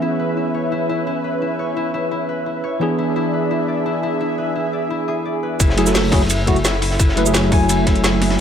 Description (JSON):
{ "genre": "liquid drum and bass", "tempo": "172 BPM", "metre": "4/4", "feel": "straight", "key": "F# minor", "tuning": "A4 = 440 Hz", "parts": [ { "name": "tine electric piano", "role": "accompaniment", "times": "0.0-8.4 s", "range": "E3 to G#5", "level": "-21 LUFS", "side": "right 1 dB", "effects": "analog chorus, dub echo" }, { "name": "lush unison pad", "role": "sustained chords", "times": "0.0-8.4 s", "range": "C#4 to E5", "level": "-24 LUFS", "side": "right 1 dB", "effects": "chorus, sidechain pumping" }, { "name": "concert harp", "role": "arpeggios", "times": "0.0-8.4 s", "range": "E4 to D5", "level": "-25 LUFS", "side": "left 5 dB", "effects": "dub echo" }, { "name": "dark detuned saw bass", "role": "bass", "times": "5.6-8.4 s", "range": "F#1", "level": "-20 LUFS", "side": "equal", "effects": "none" }, { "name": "crunchy breakbeat drum kit", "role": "drums", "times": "5.6-8.4 s", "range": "hi-hat, ride cymbal, snare drum", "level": "-25 LUFS", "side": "equal", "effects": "high-pass filter on cymbals, high-pass filter on hats, high-pass filter on snare, high-pass filter on room" }, { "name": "drum and bass drum kit", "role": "drums", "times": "5.6-8.4 s", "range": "hi-hat, shaker, snare drum", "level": "-21 LUFS", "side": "equal", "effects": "none" }, { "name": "electronic kick drum", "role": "drums", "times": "5.6-7.9 s", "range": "none", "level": "-17 LUFS", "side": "equal", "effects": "none" } ], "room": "moderate scoring stage reverb, RT60 1.4 s, small room ambience", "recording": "none", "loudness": "-16 LUFS", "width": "side -8 dB against mid", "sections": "0.0-5.6 A section; 5.6-8.4 B section", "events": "drop 5.6-8.4", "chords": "0.0 C#m7; 2.8 E7; 5.6 F#m9" }